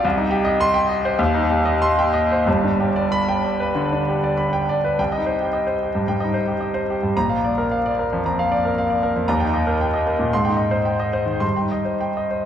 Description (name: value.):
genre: classical, romantic character piece for solo piano.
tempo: 91-117 BPM.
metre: 4/4.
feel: rubato.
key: C minor.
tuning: A4 = 440 Hz.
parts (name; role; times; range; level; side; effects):
clear grand piano; solo; 0.0-12.5 s; G1 to C6; -18 LUFS; equal; none.
room: wet concert hall reverb, RT60 2.1 s.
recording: heard from further back in the room.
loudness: -18 LUFS.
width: side -9 dB against mid.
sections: 0.0-5.0 A section; 5.0-12.5 B section.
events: none.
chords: 0.0 Cm; 1.2 Cm/Eb; 2.5 G; 5.0 Cm; 7.2 Bb; 9.3 Eb; 10.3 Abmaj7; 11.4 Cm/G.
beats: | 0.04 0.61 1.20 1.81 | 2.46 3.11 3.75 4.38 | 4.98 5.54 6.07 6.61 | 7.15 7.69 8.22 8.75 | 9.28 9.80 10.32 10.86 | 11.43 12.02.